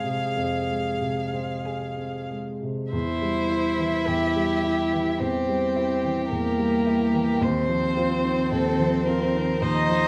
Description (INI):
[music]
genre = classical, slow romantic movement for piano quartet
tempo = 45-55 BPM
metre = 4/4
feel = rubato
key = unclear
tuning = A4 = 439 Hz
[part]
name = rich violin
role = melody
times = 0.0-10.1 s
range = Bb4 to F5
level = -31 LUFS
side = equal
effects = none
[part]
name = dark cello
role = second line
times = 0.0-10.1 s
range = Bb3 to Ab4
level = -29 LUFS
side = equal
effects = none
[part]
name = rich violin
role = second line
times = 0.0-10.1 s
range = G4 to C5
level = -32 LUFS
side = equal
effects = none
[part]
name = warm grand piano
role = accompaniment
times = 0.0-10.1 s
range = Eb2 to Ab4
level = -29 LUFS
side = equal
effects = none
[sound]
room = wet recital hall reverb, RT60 1.4 s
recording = none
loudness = -25 LUFS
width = mono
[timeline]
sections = 0.0-2.9 A section; 2.9-10.1 B section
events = none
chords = 0.0 Fm; 2.9 C/E; 7.4 F5/Eb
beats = 0.37 1.66 | 2.94 4.08 5.21 6.31 | 7.42 8.52 9.61